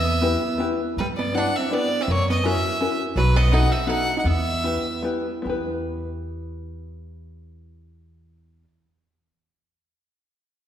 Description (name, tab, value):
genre	musette waltz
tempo	144-167 BPM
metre	3/4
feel	swing 53% on 8ths, rubato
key	E minor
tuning	A4 = 440 Hz
part	bright violin	melody	0.0-5.0 s	B4 to F#5	-25 LUFS	right 1 dB	none
part	archtop guitar, miked and amplified	second line	0.0-5.0 s	F#3 to D#4	-28 LUFS	right 3 dB	none
part	upright bass	bass	0.0-8.6 s	B1 to G2	-25 LUFS	equal	none
part	open-back banjo	accompaniment	0.2-8.7 s	B3 to B4	-27 LUFS	left 3 dB	none
room	wet scoring stage reverb, RT60 1.8 s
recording	recorded in a church or concert hall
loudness	-20 LUFS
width	side -10 dB against mid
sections	1.0-5.4 A section; 5.4-7.9 B section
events	slowing down 3.2-5.4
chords	0.0 Em; 1.0 G6; 2.1 F#7; 3.2 B7; 4.3 Em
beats	0.23 0.60 | 0.97 1.34 1.71 | 2.08 2.44 2.80 | 3.16 3.52 3.89 | 4.26 4.64 5.04 | 5.45 5.86 6.27 | 6.67 7.08 7.48